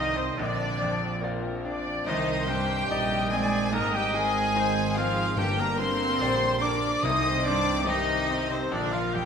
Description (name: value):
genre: cinematic, emotional film score for orchestra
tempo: 72 BPM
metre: 4/4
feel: rubato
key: C minor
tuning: A4 = 439 Hz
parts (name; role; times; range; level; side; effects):
- clear studio violin section; melody; 0.0-9.3 s; C5 to Eb6; -32 LUFS; left 5 dB; none
- rich studio violin section; second line; 0.0-9.3 s; C4 to Eb5; -34 LUFS; left 3 dB; none
- silver concert flute; second line; 0.0-9.3 s; C5 to Eb6; -32 LUFS; left 2 dB; none
- warm cor anglais; second line; 0.0-9.3 s; C4 to Eb5; -34 LUFS; right 2 dB; none
- bright grand piano; accompaniment; 0.0-9.3 s; Bb1 to Eb5; -33 LUFS; left 2 dB; none
- dark studio viola section; accompaniment; 0.0-9.3 s; G4 to Eb5; -32 LUFS; equal; none
- mellow French horn section; sustained chords; 0.0-9.3 s; D3 to F4; -36 LUFS; left 3 dB; none
- rich studio double bass section; bass; 0.0-9.3 s; G1 to C2; -34 LUFS; right 4 dB; none
- warm studio cello section; bass; 0.0-9.3 s; C3 to Eb4; -32 LUFS; right 5 dB; none
- timpani; percussion; 5.4-8.3 s; G2 to C3; -35 LUFS; left 2 dB; none
room: wet scoring stage reverb, RT60 1.7 s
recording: minimal, uncompressed stereo recording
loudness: -24 LUFS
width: side -7 dB against mid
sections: 0.0-9.3 A section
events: none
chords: 0.4 Bb; 2.1 Cmadd9; 3.7 Ab; 5.4 Gm; 7.0 Cmadd9; 8.7 Bb